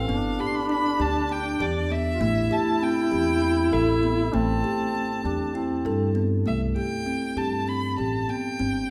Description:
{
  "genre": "contemporary instrumental, chamber music in an uneven meter",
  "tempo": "197 BPM (eighths)",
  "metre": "7/8",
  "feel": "straight",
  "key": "unclear",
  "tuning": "A4 = 444 Hz",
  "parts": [
    { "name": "rich violin", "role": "melody", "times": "0.0-8.9 s", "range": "D5 to C6", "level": "-32 LUFS", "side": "equal", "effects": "none" },
    { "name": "warm duduk", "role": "second line", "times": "0.0-6.1 s", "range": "C4 to F4", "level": "-29 LUFS", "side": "equal", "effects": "none" },
    { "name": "upright bass", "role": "bass", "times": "0.0-8.9 s", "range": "G1 to G2", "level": "-31 LUFS", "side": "equal", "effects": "none" },
    { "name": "kalimba", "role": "arpeggios", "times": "0.1-8.8 s", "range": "A3 to A4", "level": "-30 LUFS", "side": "equal", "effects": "none" }
  ],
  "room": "wet concert hall reverb, RT60 2.0 s",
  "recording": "none",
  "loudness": "-25 LUFS",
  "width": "mono",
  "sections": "0.0-6.5 A section; 6.5-8.9 B section",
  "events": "none",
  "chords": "0.1 G; 2.2 Am7; 6.5 C5",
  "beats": "| 0.08 0.39 0.69 0.99 1.30 1.60 1.91 | 2.21 2.51 2.82 3.12 3.42 3.73 4.03 | 4.34 4.64 4.95 5.25 5.55 5.86 6.16 | 6.47 6.77 7.08 7.38 7.68 7.99 8.29 | 8.60"
}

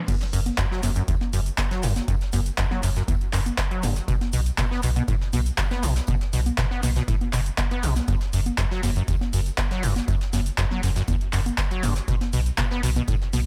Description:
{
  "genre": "acid house",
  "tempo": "120 BPM",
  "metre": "4/4",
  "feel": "straight",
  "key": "unclear",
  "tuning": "A4 = 439 Hz",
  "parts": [
    { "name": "deep acid bass", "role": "riff", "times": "0.1-13.4 s", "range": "E2 to B3", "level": "-29 LUFS", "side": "equal", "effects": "overdrive, ensemble chorus, sidechain pumping, analog delay" },
    { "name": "electronic kick drum", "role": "drums", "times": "0.1-13.2 s", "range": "none", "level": "-29 LUFS", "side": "equal", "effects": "studio reverb" },
    { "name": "punchy analog drum machine", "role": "drums", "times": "0.1-13.4 s", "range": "congas, crash cymbal, handclaps, hi-hat", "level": "-32 LUFS", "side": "equal", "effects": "overdrive, low-pass filter on hats, studio reverb, low-pass filter on snare, low-pass filter on cymbals, low-pass filter on perc, analog delay" },
    { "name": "tambourine and snare drum", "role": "drums", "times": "0.1-13.5 s", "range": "none", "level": "-43 LUFS", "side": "equal", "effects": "none" },
    { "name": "tube shaker", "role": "percussion", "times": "0.1-13.4 s", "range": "none", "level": "-43 LUFS", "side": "equal", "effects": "none" },
    { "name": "warm sub bass", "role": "bass", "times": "0.3-13.5 s", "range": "F#1 to B1", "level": "-27 LUFS", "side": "equal", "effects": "sidechain pumping" }
  ],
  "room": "little or no reverb",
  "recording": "echo-heavy mix",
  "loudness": "-24 LUFS",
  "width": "mono",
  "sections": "0.1-13.5 A section",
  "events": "drop 0.1-13.5",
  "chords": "0.1 N.C.; 4.1 B5; 8.1 N.C.",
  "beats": "| 0.08 0.58 1.08 1.58 | 2.08 2.58 3.08 3.58 | 4.08 4.58 5.08 5.58 | 6.08 6.58 7.08 7.58 | 8.08 8.58 9.08 9.58 | 10.08 10.58 11.08 11.58 | 12.08 12.58 13.08"
}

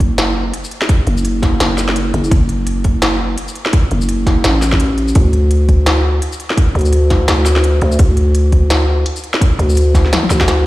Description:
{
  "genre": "half-time drum and bass",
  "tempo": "169 BPM",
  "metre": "4/4",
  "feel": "swing 59% on 16ths, half-time",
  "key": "F# minor",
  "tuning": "A4 = 440 Hz",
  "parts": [
    { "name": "growling 808-style bass", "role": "bass", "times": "0.0-10.7 s", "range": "F#1 to D2", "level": "-13 LUFS", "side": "equal", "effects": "tube saturation" },
    { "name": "electronic kick drum", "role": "drums", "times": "0.0-10.5 s", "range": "none", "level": "-12 LUFS", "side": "equal", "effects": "none" },
    { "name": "industrial drum kit", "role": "drums", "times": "0.0-10.6 s", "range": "hi-hat, shaker, snare drum, toms", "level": "-18 LUFS", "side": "equal", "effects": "none" }
  ],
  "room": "little or no reverb",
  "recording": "played on a big sound system in a bare room, stone room reverb",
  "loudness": "-11 LUFS",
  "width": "side -17 dB against mid",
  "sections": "0.0-10.7 A section",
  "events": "drum fill 10.1-10.7",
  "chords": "none",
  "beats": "0.18 0.54 | 0.89 1.25 1.60 1.96 | 2.31 2.67 3.02 3.38 | 3.73 4.09 4.44 4.80 | 5.15 5.51 5.86 6.22 | 6.57 6.93 7.28 7.64 | 7.99 8.35 8.70 9.06 | 9.41 9.77 10.12 10.48"
}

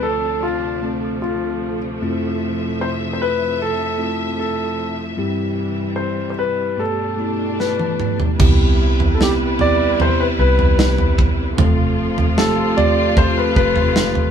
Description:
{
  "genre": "pop ballad",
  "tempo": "76 BPM",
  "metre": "4/4",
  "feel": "straight",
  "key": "C major",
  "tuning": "A4 = 440 Hz",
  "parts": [
    { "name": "clear concert grand piano", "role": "melody", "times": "0.0-14.3 s", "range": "F4 to D5", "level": "-20 LUFS", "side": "left 1 dB", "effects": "none" },
    { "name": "bell-like tine electric piano", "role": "accompaniment", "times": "0.0-14.3 s", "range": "D2 to A4", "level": "-22 LUFS", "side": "left 1 dB", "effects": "none" },
    { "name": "warm studio string section", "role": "sustained chords", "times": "0.0-14.3 s", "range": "G2 to E5", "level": "-25 LUFS", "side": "equal", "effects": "none" },
    { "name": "modern studio drum kit", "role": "drums", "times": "7.6-14.3 s", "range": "crash cymbal, kick drum, snare drum, toms", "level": "-18 LUFS", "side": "right 1 dB", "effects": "none" },
    { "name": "vintage muted fingered electric bass", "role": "bass", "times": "8.4-14.3 s", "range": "F1 to C2", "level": "-20 LUFS", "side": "right 1 dB", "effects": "none" }
  ],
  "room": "moderate studio reverb, RT60 0.6 s",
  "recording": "band playing live in one room",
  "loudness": "-16 LUFS",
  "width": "side -8 dB against mid",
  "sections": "0.0-8.4 A section; 8.4-14.3 B section",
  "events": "drum fill 7.6-8.4",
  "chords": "0.0 Dm7; 2.0 Fmaj7; 5.2 C/G; 6.8 Gadd9; 8.4 Cmaj7; 11.6 F",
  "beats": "0.43 1.22 | 2.02 2.80 3.59 4.38 | 5.18 5.98 6.78 7.59 | 8.40 9.20 9.99 10.79 | 11.58 12.38 13.17 13.95"
}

